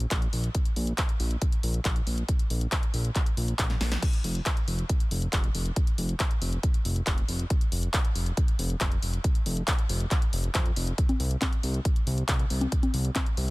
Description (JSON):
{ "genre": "uplifting trance", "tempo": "138 BPM", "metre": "4/4", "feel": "straight", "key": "unclear", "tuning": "A4 = 439 Hz", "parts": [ { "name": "fat analog bass", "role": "bass", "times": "0.0-13.5 s", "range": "F1 to F2", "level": "-28 LUFS", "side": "equal", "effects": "sidechain pumping" }, { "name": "punchy analog drum machine", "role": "drums", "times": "0.0-13.5 s", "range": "congas, crash cymbal, handclaps, hi-hat, snare drum", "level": "-32 LUFS", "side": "left 1 dB", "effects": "none" }, { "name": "electronic kick drum", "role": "drums", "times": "0.1-13.2 s", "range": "none", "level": "-25 LUFS", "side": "equal", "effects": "none" } ], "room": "little or no reverb", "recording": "none", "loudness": "-24 LUFS", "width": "side -22 dB against mid", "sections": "0.0-13.5 A section", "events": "drum fill 3.7-4.0", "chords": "none", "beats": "0.11 | 0.55 0.98 1.42 1.85 | 2.29 2.72 3.15 3.59 | 4.03 4.46 4.89 5.33 | 5.76 6.20 6.63 7.07 | 7.50 7.94 8.37 8.81 | 9.24 9.68 10.11 10.55 | 10.98 11.42 11.85 12.29 | 12.72 13.15" }